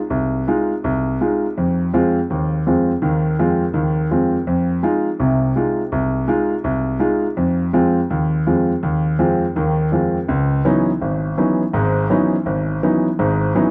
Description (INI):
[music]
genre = jazz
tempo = 165 BPM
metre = 4/4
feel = swing 63% on 8ths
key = C# minor from 10.3 s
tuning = A4 = 440 Hz
[part]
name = warm grand piano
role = solo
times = 0.1-13.7 s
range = G#1 to F4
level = -18 LUFS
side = equal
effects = tape echo
[sound]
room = moderate small room ambience, RT60 0.5 s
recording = dry, close 1970s-style studio recording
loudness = -18 LUFS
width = mono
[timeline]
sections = 0.0-10.3 A section; 10.3-13.7 B section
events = none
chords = 0.0 Fm7; 1.6 Ab6; 4.5 Fm7; 7.4 Ab6; 10.3 C#m11